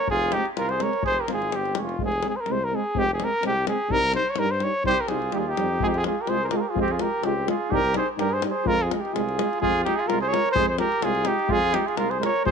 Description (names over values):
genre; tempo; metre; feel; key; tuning
balkan folk, Balkan brass band; 126 BPM; 2/4; swing 55% on 16ths; F minor; A4 = 439 Hz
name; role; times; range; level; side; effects
mellow trumpet; melody; 0.0-12.5 s; F4 to Db5; -24 LUFS; left 1 dB; none
clear flugelhorn; second line; 0.0-2.0, 4.9-12.5 s; C4 to Bb4; -29 LUFS; right 11 dB; none
warm tuba; bass; 0.1-12.5 s; F1 to G2; -31 LUFS; equal; none
davul; percussion; 0.1-12.5 s; none; -32 LUFS; left 7 dB; none
dark euphonium; accompaniment; 0.3-12.5 s; C4 to F4; -32 LUFS; left 16 dB; none
mellow trombone; accompaniment; 0.3-12.5 s; G3 to Ab3; -31 LUFS; right 13 dB; none
room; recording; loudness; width
light reverb, small room ambience; 1960s-style stereo with parts hard left and right; -21 LUFS; side -6 dB against mid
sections
0.0-2.0 A section; 2.0-9.6 B section; 9.6-12.5 A section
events
none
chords
0.1 Fm; 3.9 Cm; 5.8 Fm; 7.7 Cm; 8.7 Fm